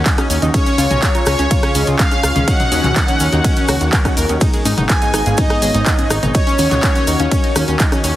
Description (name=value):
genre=progressive house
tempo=124 BPM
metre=4/4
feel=straight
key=Eb minor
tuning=A4 = 441 Hz
part: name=lush unison pad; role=sustained chords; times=0.0-8.2 s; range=Db3 to Ab4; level=-26 LUFS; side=equal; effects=none
part: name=deep mellow chord stab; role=stabs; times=0.0-8.1 s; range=Ab2 to Bb5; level=-23 LUFS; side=left 1 dB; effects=chorus, phaser, sidechain pumping, tape echo
part: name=twinkling granular texture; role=texture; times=0.0-8.2 s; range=Db5 to Db6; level=-33 LUFS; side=right 1 dB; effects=none
part: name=analog pluck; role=arpeggios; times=0.1-8.1 s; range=Db4 to Gb6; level=-23 LUFS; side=left 1 dB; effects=chorus, sidechain pumping, tape echo
part: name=big-room dance drum kit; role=drums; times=0.1-8.1 s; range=handclaps, hi-hat, ride cymbal, rim click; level=-21 LUFS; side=equal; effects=none
part: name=electronic kick drum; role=drums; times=0.1-7.9 s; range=none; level=-16 LUFS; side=equal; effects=none
part: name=tube shaker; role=percussion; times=0.1-8.1 s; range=none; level=-29 LUFS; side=left 2 dB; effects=none
part: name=electronic congas and toms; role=percussion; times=0.2-8.0 s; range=none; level=-25 LUFS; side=left 2 dB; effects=sidechain pumping on perc, sidechain pumping on toms
part: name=fat analog bass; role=bass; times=0.3-8.1 s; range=Gb1 to Eb2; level=-18 LUFS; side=equal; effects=sidechain pumping
part: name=soft supersaw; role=melody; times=0.5-7.5 s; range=Db5 to Ab5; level=-21 LUFS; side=equal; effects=phaser, tape echo
room=light reverb, digital ambience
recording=heavily compressed radio sound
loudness=-12 LUFS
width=side -14 dB against mid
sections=0.0-8.2 A section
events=none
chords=0.0 Ebm7; 0.5 Db; 2.5 Ebm7; 4.4 Abm; 6.3 Ebm7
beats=0.06 | 0.54 1.02 1.51 1.99 | 2.48 2.96 3.44 3.93 | 4.41 4.89 5.38 5.86 | 6.35 6.83 7.32 7.80